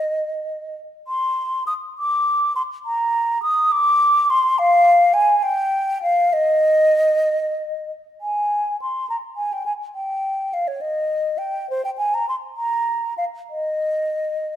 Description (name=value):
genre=classical, baroque-style fantasia for unaccompanied flute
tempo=62-72 BPM (dotted quarters)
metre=6/8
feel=rubato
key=Eb major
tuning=A4 = 439 Hz
part: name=mellow hollow concert flute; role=solo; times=0.0-14.6 s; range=C5 to Eb6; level=-18 LUFS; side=equal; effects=none
room=moderate recital hall reverb, RT60 1.9 s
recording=none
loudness=-18 LUFS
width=side -10 dB against mid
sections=0.0-8.2 A section; 8.2-14.6 A section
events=none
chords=none